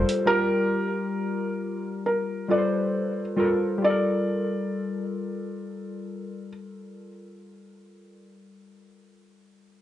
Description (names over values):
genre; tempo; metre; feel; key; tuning
hip hop; 67 BPM; 4/4; swing 61% on 16ths; G minor; A4 = 443 Hz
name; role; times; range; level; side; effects
warbly lo-fi synth keys; accompaniment; 0.0-9.8 s; G3 to D5; -26 LUFS; left 1 dB; chorus, cassette tape, low-pass filter
felt-muted upright piano; melody; 0.3-6.5 s; Bb4 to D5; -26 LUFS; equal; low-pass filter
room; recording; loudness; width
moderate studio reverb, RT60 0.6 s; nothing above 10.4 kHz; -24 LUFS; side -12 dB against mid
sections
0.0-3.8 A section; 3.8-7.4 B section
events
none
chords
0.3 Gm9